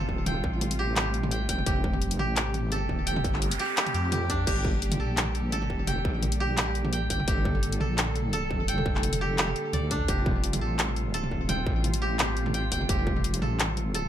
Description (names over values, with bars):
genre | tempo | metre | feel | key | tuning
half-time drum and bass | 171 BPM | 4/4 | swing 54% on 16ths, half-time | unclear | A4 = 440 Hz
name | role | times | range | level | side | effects
muted studio cello section | sustained chords | 0.0-14.1 s | C3 to A4 | -34 LUFS | equal | vintage 12-bit sampler grit, sidechain pumping
koto | arpeggios | 0.0-14.1 s | D4 to G5 | -32 LUFS | right 2 dB | vintage 12-bit sampler grit, ping-pong delay
deep soft wobble bass | bass | 0.0-14.1 s | Eb1 to F2 | -29 LUFS | equal | chorus
drum and bass drum kit | drums | 0.0-14.0 s | crash cymbal, handclaps, hi-hat, toms | -30 LUFS | equal | none
electronic kick drum | drums | 0.1-13.1 s | none | -30 LUFS | equal | distortion
noise sweep | sound effects | 3.3-4.5 s | none | -36 LUFS | right 6 dB | none
room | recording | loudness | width
light reverb | none | -25 LUFS | side -10 dB against mid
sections
0.0-14.1 A section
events
noise sweep 3.3-4.5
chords
0.0 Fadd9; 4.5 Gm; 10.1 Fadd9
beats
| 0.26 0.61 0.96 1.31 | 1.67 2.02 2.37 2.72 | 3.07 3.42 3.77 4.12 | 4.47 4.82 5.17 5.52 | 5.88 6.23 6.58 6.93 | 7.28 7.63 7.98 8.33 | 8.68 9.03 9.38 9.73 | 10.09 10.44 10.79 11.14 | 11.49 11.84 12.19 12.54 | 12.89 13.24 13.59 13.95